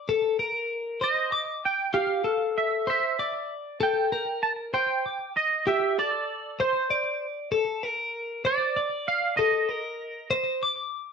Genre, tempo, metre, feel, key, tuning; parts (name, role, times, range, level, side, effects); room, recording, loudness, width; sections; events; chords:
rock; 65 BPM (dotted quarters); 6/8; straight; A4 = 440 Hz
twelve-string electric guitar; arpeggios; 0.0-11.1 s; G4 to D6; -27 LUFS; left 3 dB; slapback echo
twangy electric guitar; melody; 1.0-10.9 s; C5 to A5; -26 LUFS; right 3 dB; analog chorus, slapback echo
moderate studio reverb, RT60 0.6 s; dark, warm production; -24 LUFS; side -6 dB against mid
0.0-11.1 A section
0.1 Cm7; 1.9 Fmaj7; 3.8 C7sus2/A; 5.7 Gsus24; 7.5 Cm7